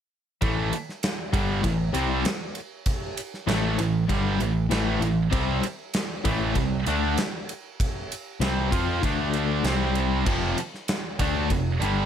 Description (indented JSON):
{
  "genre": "hard rock",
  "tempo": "97 BPM",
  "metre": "4/4",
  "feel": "straight",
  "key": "A minor",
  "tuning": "A4 = 440 Hz",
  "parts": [
    { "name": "overdriven semi-hollow guitar", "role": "riff", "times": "0.4-12.1 s", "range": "F2 to F4", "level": "-28 LUFS", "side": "left 10 dB", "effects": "harmonic tremolo" },
    { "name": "scooped high-gain guitar", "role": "riff", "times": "0.4-12.1 s", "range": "F2 to F4", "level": "-30 LUFS", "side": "right 1 dB", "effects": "distortion" },
    { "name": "tight distorted guitar", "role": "riff", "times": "0.4-12.1 s", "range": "F2 to F4", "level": "-28 LUFS", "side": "right 9 dB", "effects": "distortion" },
    { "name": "picked electric bass", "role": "bass", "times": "0.4-12.1 s", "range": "F1 to F2", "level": "-28 LUFS", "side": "equal", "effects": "none" },
    { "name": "gated 80s drum kit", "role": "drums", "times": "0.4-12.0 s", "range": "crash cymbal, kick drum, ride cymbal, snare drum", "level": "-29 LUFS", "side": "equal", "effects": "none" }
  ],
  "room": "light reverb",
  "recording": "none",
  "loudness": "-23 LUFS",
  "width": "side -9 dB against mid",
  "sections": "0.4-12.1 A section",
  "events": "none",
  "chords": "0.4 Am; 5.3 C5; 9.0 D5; 9.6 C5; 10.3 F5"
}